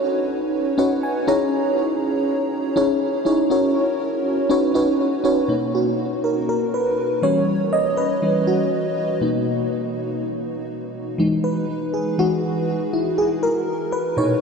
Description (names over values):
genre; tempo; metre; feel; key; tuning
pop; 121 BPM; 4/4; swing 55% on 16ths; B major; A4 = 439 Hz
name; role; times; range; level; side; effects
FM electric piano with soft pad layer; solo; 0.0-14.4 s; A#2 to A#5; -18 LUFS; equal; chorus, tremolo, diffuse ambient delay
room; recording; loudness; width
wet huge ambient reverb, RT60 8.6 s; dreamy mix soaked in reverb; -18 LUFS; side -5 dB against mid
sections
0.0-5.5 A section; 5.5-14.4 B section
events
FM electric piano fill 0.5-1.5; FM electric piano solo 5.5-14.4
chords
0.0 Badd9; 1.3 C#madd9; 3.5 F#7; 4.5 Badd9; 5.5 Bmaj7; 7.2 Em6; 9.2 Bmaj7; 11.2 Emaj7; 13.4 Bmaj7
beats
0.04 0.54 1.03 | 1.53 2.02 2.52 3.02 | 3.51 4.01 4.50 5.00 | 5.50 5.99 6.49 6.98 | 7.48 7.97 8.47 8.97 | 9.46 9.96 10.46 10.95 | 11.45 11.94 12.44 12.93 | 13.43 13.93